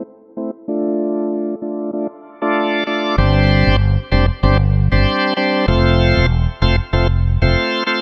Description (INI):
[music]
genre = dancehall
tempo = 96 BPM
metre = 4/4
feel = swing 56% on 16ths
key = unclear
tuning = A4 = 439 Hz
[part]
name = overdriven tonewheel organ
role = accompaniment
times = 0.0-8.0 s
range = G3 to D5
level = -19 LUFS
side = equal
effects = slow rotary speaker
[part]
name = mellow fretless electric bass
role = bass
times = 3.2-7.5 s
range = E1 to G1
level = -16 LUFS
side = equal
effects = none
[sound]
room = light reverb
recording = low-pass filter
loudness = -16 LUFS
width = mono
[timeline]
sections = 0.0-3.2 A section; 3.2-8.0 B section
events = filter sweep 0.0-3.2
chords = 0.0 Am; 0.7 Dm; 3.2 Gsus4; 5.7 F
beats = 0.06 | 0.68 1.31 1.93 2.56 | 3.18 3.81 4.43 5.06 | 5.68 6.31 6.93 7.56